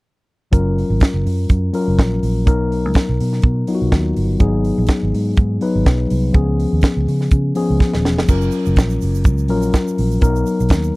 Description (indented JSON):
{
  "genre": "disco",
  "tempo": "124 BPM",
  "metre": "4/4",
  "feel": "straight",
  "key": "F# major",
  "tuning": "A4 = 440 Hz",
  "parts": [
    { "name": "mellow tine electric piano", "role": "accompaniment", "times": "0.5-11.0 s", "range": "E#3 to B4", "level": "-19 LUFS", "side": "left 2 dB", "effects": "none" },
    { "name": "vintage muted fingered electric bass", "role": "bass", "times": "0.5-10.9 s", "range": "D#1 to C#3", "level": "-18 LUFS", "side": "equal", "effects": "none" },
    { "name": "tight funk drum kit", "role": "drums", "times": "0.5-10.8 s", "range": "crash cymbal, hi-hat, kick drum, snare drum", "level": "-14 LUFS", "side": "right 1 dB", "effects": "none" },
    { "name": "egg shaker", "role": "percussion", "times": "8.3-10.9 s", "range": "none", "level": "-41 LUFS", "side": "right 18 dB", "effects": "none" }
  ],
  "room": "little or no reverb",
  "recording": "dry, close 1970s-style studio recording",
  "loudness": "-14 LUFS",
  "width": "side -22 dB against mid",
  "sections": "0.5-8.3 A section; 8.3-11.0 B section",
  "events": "drum fill 7.8-8.3",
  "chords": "0.5 F#maj7; 2.5 Bmaj7; 4.4 G#m7; 6.3 C#7; 8.3 F#maj7; 10.2 Bmaj7",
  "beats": "| 0.53 1.01 1.50 1.98 | 2.47 2.95 3.44 3.92 | 4.41 4.89 5.38 5.86 | 6.34 6.83 7.32 7.80 | 8.29 8.77 9.25 9.74 | 10.22 10.71"
}